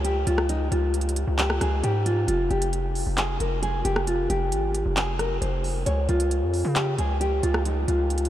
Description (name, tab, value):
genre	hip hop, trap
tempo	134 BPM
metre	4/4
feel	half-time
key	unclear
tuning	A4 = 440 Hz
part	nylon-string guitar	melody	0.0-8.3 s	Eb4 to Db5	-26 LUFS	equal	low-pass filter, analog delay
part	distorted 808-style bass	bass	0.0-8.3 s	F1 to Db3	-25 LUFS	equal	distortion
part	trap drum kit	drums	0.0-8.3 s	handclaps, hi-hat, rim click	-30 LUFS	equal	none
room	moderate huge ambient reverb, RT60 8.1 s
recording	dreamy mix soaked in reverb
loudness	-22 LUFS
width	side -12 dB against mid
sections	0.0-8.3 A section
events	none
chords	0.0 Db; 2.3 Fsus2; 5.9 Db